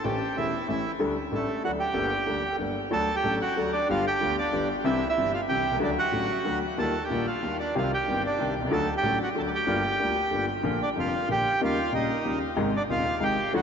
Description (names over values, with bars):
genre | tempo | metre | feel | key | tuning
tango | 187 BPM | 3/4 | rubato | G minor | A4 = 440 Hz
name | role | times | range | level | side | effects
bandoneon | melody | 0.0-13.6 s | A3 to A5 | -27 LUFS | right 2 dB | ping-pong delay
clear concert grand piano | accompaniment | 0.0-13.6 s | Eb1 to A4 | -28 LUFS | left 2 dB | none
room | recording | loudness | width
wet huge ambient reverb, RT60 6.9 s | dreamy mix soaked in reverb, nothing above 7.6 kHz | -24 LUFS | side -7 dB against mid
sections
0.0-2.9 A section; 2.9-13.6 B section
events
none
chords
0.0 A7; 1.0 Dsus4; 1.6 D; 2.0 Gmadd9; 2.9 D; 3.9 G; 4.9 C; 5.8 D; 6.8 Ebadd9; 7.8 Cm; 8.7 D; 9.7 Gm7; 10.6 Bb; 11.6 Eb7; 12.6 Ab